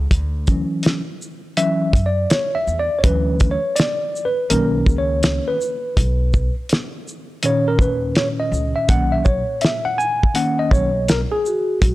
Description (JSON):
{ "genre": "hip hop, jazz-hop", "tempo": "82 BPM", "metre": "4/4", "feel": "swing 64% on 16ths", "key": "B major", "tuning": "A4 = 440 Hz", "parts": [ { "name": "upright bass", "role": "bass", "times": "0.0-11.9 s", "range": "B1 to F#2", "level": "-22 LUFS", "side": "equal", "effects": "transformer saturation" }, { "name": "cloth-damped thuddy drum kit", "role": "drums", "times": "0.1-11.9 s", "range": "hi-hat, kick drum, shaker, snare drum", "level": "-18 LUFS", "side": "equal", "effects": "none" }, { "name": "mellow tine electric piano", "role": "accompaniment", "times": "0.5-11.8 s", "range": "A#2 to G#5", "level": "-19 LUFS", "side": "equal", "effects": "medium stereo tremolo" }, { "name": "vibraphone with soft mallets", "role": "melody", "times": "11.5-11.9 s", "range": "F#4", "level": "-22 LUFS", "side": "equal", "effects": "none" } ], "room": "light reverb, small room reverb", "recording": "dry, gritty hardware recording", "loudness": "-16 LUFS", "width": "side -17 dB against mid", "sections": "0.0-11.8 A section", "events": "tine electric piano solo 0.0-11.8", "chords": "0.0 Dmaj9; 4.5 Bmaj9" }